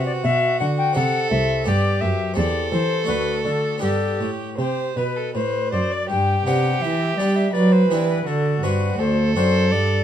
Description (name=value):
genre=classical, baroque-style sonata movement with continuo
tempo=82 BPM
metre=3/4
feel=uneven beats, rubato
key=G major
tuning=A4 = 440 Hz
part: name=mellow alto recorder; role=melody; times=0.0-10.0 s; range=G4 to G5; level=-24 LUFS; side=left 6 dB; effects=none
part: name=clear violin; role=second line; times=0.0-10.0 s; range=F#4 to D5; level=-25 LUFS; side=right 6 dB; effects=none
part: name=harpsichord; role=accompaniment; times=0.0-10.0 s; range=C2 to B4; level=-26 LUFS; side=left 2 dB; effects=none
part: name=warm cello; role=bass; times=0.0-10.0 s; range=C2 to G3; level=-22 LUFS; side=right 2 dB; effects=none
room=light reverb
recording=dark, warm production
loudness=-18 LUFS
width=side -10 dB against mid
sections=0.0-6.1 A section; 6.1-10.0 B section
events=none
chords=0.0 Bm; 1.0 C; 1.7 G; 2.4 C/E; 3.1 D; 3.8 G; 8.3 D7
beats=0.24 0.96 | 1.67 2.37 3.09 | 3.83 4.58 5.34 | 6.10 6.82 7.54 | 8.27 8.99 9.72